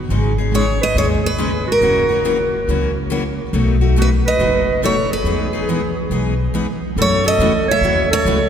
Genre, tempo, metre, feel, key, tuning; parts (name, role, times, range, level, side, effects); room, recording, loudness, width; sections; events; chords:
acoustic string swing (jazz manouche); 140 BPM; 4/4; swing 64% on 8ths; A4 = 444 Hz
picked steel-string acoustic guitar; accompaniment; 0.1-8.4 s; B2 to G#4; -23 LUFS; left 5 dB
picked steel-string acoustic guitar; accompaniment; 0.1-8.4 s; B2 to B4; -25 LUFS; right 2 dB
upright bass; bass; 0.1-8.5 s; F#1 to F#2; -20 LUFS; equal
picked steel-string acoustic guitar; melody; 0.5-8.5 s; A#4 to E5; -19 LUFS; equal
breathy clarinet; second line; 0.5-8.5 s; F#4 to C#5; -22 LUFS; right 3 dB
wet cathedral reverb, RT60 4.2 s; recorded in a church or concert hall; -14 LUFS; side -8 dB against mid
0.0-7.0 A section; 7.0-8.5 B section
break 6.5-7.0
0.1 G#sus4; 1.8 F#7; 3.5 B7; 5.3 Emaj7; 7.0 F#m7